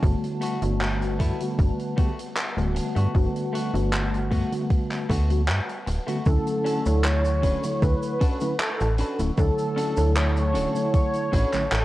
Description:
vaporwave; 77 BPM; 4/4; straight; A4 = 439 Hz
mellow tine electric piano; accompaniment; 0.0-11.6 s; D3 to C#5; -28 LUFS; equal; medium stereo tremolo, analog chorus, analog delay
warbly tape-like pad; sustained chords; 0.0-11.8 s; G3 to C#6; -36 LUFS; equal; chorus, built-in reverb
clean electric guitar; riff; 0.0-11.5 s; A3 to B4; -35 LUFS; left 2 dB; wide subtle chorus, analog delay
slap-like FM bass; bass; 0.0-11.8 s; D1 to G2; -24 LUFS; equal
electronic kick drum; drums; 0.0-11.5 s; -22 LUFS; equal; overdrive
swinging big-band drum kit; drums; 0.0-11.8 s; cabasa, handclaps, hi-hat; -32 LUFS; equal
warm velvety synth lead; melody; 6.3-11.8 s; A4 to C#5; -27 LUFS; right 1 dB; chorus, tape echo
light reverb, small room ambience; worn, warbling old tape, cassette tape, warbly pitch drift; -21 LUFS; side -16 dB against mid
0.0-6.3 A section; 6.3-11.8 B section
0.0 Gmaj9; 6.3 Dmaj7
| 0.03 0.81 1.59 2.37 | 3.15 3.93 4.71 5.49 | 6.26 7.04 7.82 8.60 | 9.38 10.16 10.94 11.72

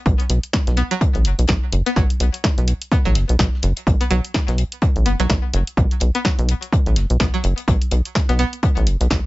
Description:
minimal techno; 126 BPM; 4/4; swing 58% on 16ths; A4 = 440 Hz
rubbery square bass; bass; 0.1-9.2 s; F#1 to B1; -18 LUFS; equal; sidechain pumping
damped 70s drum kit; drums; 0.1-9.2 s; hi-hat, snare drum; -34 LUFS; left 4 dB; sidechain pumping on hats, high-pass filter on hats, high-pass filter on snare, high-pass filter on room
electronic kick drum; drums; 0.1-9.2 s; -19 LUFS; equal
punchy analog drum machine; drums; 0.2-9.2 s; hi-hat, snare drum; -24 LUFS; equal
string-like resonator pluck; riff; 0.8-8.5 s; F#3 to B3; -25 LUFS; equal; chorus, sidechain pumping, ping-pong delay
little or no reverb; nothing above 7.8 kHz; -16 LUFS; side -19 dB against mid
0.0-9.3 A section
0.0 B5
| 0.06 0.54 1.01 1.49 | 1.96 2.44 2.92 3.39 | 3.87 4.34 4.82 5.30 | 5.77 6.25 6.72 7.20 | 7.68 8.15 8.63 9.11

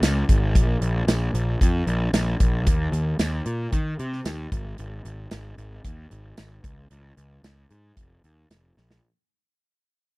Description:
classic rock; 113 BPM; 4/4; straight; A4 = 440 Hz
fuzz picked electric bass; bass; 0.0-9.0 s; F1 to Eb3; -25 LUFS; equal; overdrive
big rock drum kit; drums; 0.0-9.0 s; hi-hat, kick drum, snare drum, tambourine; -22 LUFS; equal
little or no reverb; dry, close 1970s-style studio recording; -21 LUFS; side -23 dB against mid
0.0-9.0 A section
fade-out 0.0-9.0; drum fill 8.8
0.02 | 0.55 1.08 1.61 2.14 | 2.67 3.20 3.73 4.26 | 4.79 5.32 5.85 6.38 | 6.91 7.44 7.97 8.50

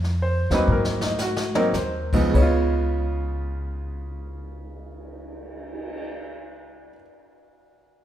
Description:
jazz piano trio; 94-130 BPM; 3/4; swing 66% on 8ths; Db mixolydian; A4 = 440 Hz
upright bass; bass; 0.0-6.9 s; Db2 to Ab2; -25 LUFS; equal
jazz brush drum kit; drums; 0.0-6.0 s; crash cymbal, cymbal swell, hi-hat, kick drum, snare drum, toms; -30 LUFS; left 1 dB
bright upright piano; melody; 0.2-7.0 s; Db2 to Db5; -24 LUFS; right 1 dB
moderate recital hall reverb, RT60 1.6 s; recorded in a church or concert hall; -21 LUFS; side -11 dB against mid
0.0-2.3 A section; 2.3-6.2 B section
slowing down 0.0-2.3; drum fill 0.7-1.7
0.0 F5; 0.7 Ab9; 2.3 Db9
0.20 | 0.68 1.19 1.74 | 2.34 2.98 3.61 | 4.25 4.88 5.52

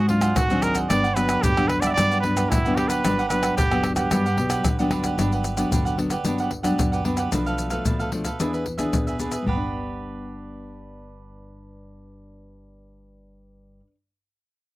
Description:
samba and choro; 112 BPM; 4/4; straight; G major; A4 = 440 Hz
bright trumpet; melody; 0.0-4.9 s; E4 to E5; -24 LUFS; right 2 dB
cavaquinho; accompaniment; 0.0-13.9 s; D4 to Gb5; -29 LUFS; right 4 dB
nylon-string guitar; accompaniment; 0.0-13.9 s; G2 to G#4; -26 LUFS; left 1 dB
upright bass; bass; 0.0-13.8 s; G1 to E3; -28 LUFS; equal
surdo, pandeiro, maracas and tamborim; percussion; 0.1-9.6 s; -26 LUFS; left 1 dB
little or no reverb; recorded outdoors, with no room sound; -20 LUFS; side -18 dB against mid
0.0-5.2 A section; 5.2-9.5 B section; 9.5-13.8 C section
0.0 Ab7#11; 0.9 Gmaj7; 7.3 Bm7b5; 8.4 E7; 9.5 Gmaj7
0.36 | 0.90 1.43 1.97 2.50 | 3.04 3.57 4.11 4.64 | 5.18 5.71 6.25 6.78 | 7.32 7.86 8.39 8.93 | 9.46 10.00 10.54 11.08 | 11.61 12.15 12.69 13.22

